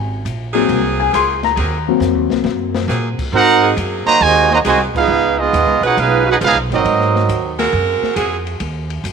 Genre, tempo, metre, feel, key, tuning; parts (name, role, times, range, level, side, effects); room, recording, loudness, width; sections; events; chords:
jazz, big band swing; 137 BPM; 4/4; swing 67% on 8ths; Ab mixolydian; A4 = 438 Hz
dark baby grand piano; accompaniment; 0.0-3.3 s; Gb3 to C6; -17 LUFS; left 12 dB
upright bass; bass; 0.0-9.1 s; Ab1 to Bb2; -21 LUFS; right 2 dB
open jazz drum kit; drums; 0.3-9.1 s; crash cymbal, hi-hat, kick drum, ride cymbal, snare drum; -27 LUFS; left 6 dB
warm saxophone section; sustained chords; 0.5-8.4 s; F3 to Cb5; -21 LUFS; right 3 dB
mellow trumpet section; melody; 3.3-7.6 s; Cb4 to Bb5; -13 LUFS; right 3 dB
warm trombone section; second line; 3.3-7.6 s; C3 to Gb4; -20 LUFS; right 13 dB
moderate plate reverb, RT60 1.9 s, studio ambience; 1960s-style stereo with parts hard left and right; -13 LUFS; side -6 dB against mid
0.0-3.3 A section; 3.3-9.1 B section
grand piano solo 0.0-3.3; drum fill 2.0-2.9; band accent 4.9
0.0 Ab9; 5.1 Db9; 6.8 Ab9; 8.6 Ab7(no3) (rootless)